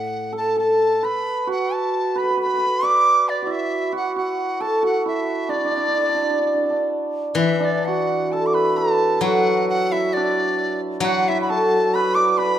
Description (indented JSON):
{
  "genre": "chinese traditional, Chinese chamber ensemble",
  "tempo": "66 BPM",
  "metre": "2/4",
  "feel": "rubato",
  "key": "D gong mode",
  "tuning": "A4 = 440 Hz",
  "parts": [
    { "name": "bright reedy large dizi", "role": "melody", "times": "0.0-12.6 s", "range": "D5 to D6", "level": "-22 LUFS", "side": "equal", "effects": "none" },
    { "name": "steel-string zither", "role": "accompaniment", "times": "0.0-1.0, 7.3-12.6 s", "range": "A2 to F#3", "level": "-25 LUFS", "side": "left 5 dB", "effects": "none" },
    { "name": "hammered dulcimer", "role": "second line", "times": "0.3-12.6 s", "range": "D4 to D5", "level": "-21 LUFS", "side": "right 2 dB", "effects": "none" }
  ],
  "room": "wet recital hall reverb, RT60 1.4 s",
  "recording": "minimal, uncompressed stereo recording",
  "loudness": "-18 LUFS",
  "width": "side -10 dB against mid",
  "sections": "0.0-7.4 A section; 7.4-12.6 B section",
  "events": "none",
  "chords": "none"
}